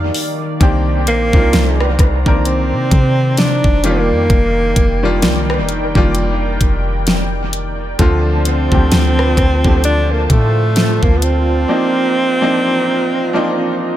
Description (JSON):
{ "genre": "contemporary R&B", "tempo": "65 BPM", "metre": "4/4", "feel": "swing 58% on 16ths", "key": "unclear", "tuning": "A4 = 440 Hz", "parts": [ { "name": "clear baby grand piano", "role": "accompaniment", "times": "0.0-14.0 s", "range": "D3 to Bb4", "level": "-20 LUFS", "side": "left 1 dB", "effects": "dub echo" }, { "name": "warm analog pad", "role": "sustained chords", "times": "0.0-14.0 s", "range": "Eb3 to Bb5", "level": "-22 LUFS", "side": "right 1 dB", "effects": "wide subtle chorus" }, { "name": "soft 808-style bass", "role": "bass", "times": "0.0-11.7 s", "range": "F1 to C3", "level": "-16 LUFS", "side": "equal", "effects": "none" }, { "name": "smooth R&B drum kit", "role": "drums", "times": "0.1-11.5 s", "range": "hi-hat, kick drum, rim click, snare drum", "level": "-15 LUFS", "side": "equal", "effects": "dub echo" }, { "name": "breathy alto saxophone", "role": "melody", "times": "1.1-14.0 s", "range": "A3 to D4", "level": "-17 LUFS", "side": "right 1 dB", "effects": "dub echo" } ], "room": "little or no reverb", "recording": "echo-heavy mix", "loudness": "-12 LUFS", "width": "side -12 dB against mid", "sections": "0.0-14.0 A section", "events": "break 11.7-14.0", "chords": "0.0 F13sus4; 8.0 Dm7; 11.7 Cm11", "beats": "| 0.61 1.53 2.45 3.38 | 4.30 5.22 6.15 7.07 | 7.99 8.91 9.84 10.76 | 11.68 12.61 13.53" }